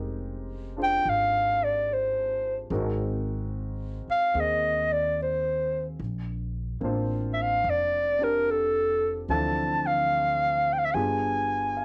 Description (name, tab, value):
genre	jazz ballad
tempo	73 BPM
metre	4/4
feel	swing 67% on 8ths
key	unclear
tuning	A4 = 440 Hz
part	warm concert grand piano	accompaniment	0.0-11.8 s	E3 to F5	-36 LUFS	equal	cassette tape
part	upright bass	bass	0.0-11.8 s	F1 to Eb2	-36 LUFS	equal	none
part	breathy clarinet	melody	0.8-11.8 s	A4 to A5	-26 LUFS	equal	cassette tape
room	moderate studio reverb, RT60 0.6 s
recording	home recording on cassette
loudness	-27 LUFS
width	mono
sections	0.0-11.8 A section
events	none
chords	0.0 Fm11; 2.7 Ab9; 6.0 Bbmaj9; 9.3 Dm7; 10.9 G7b9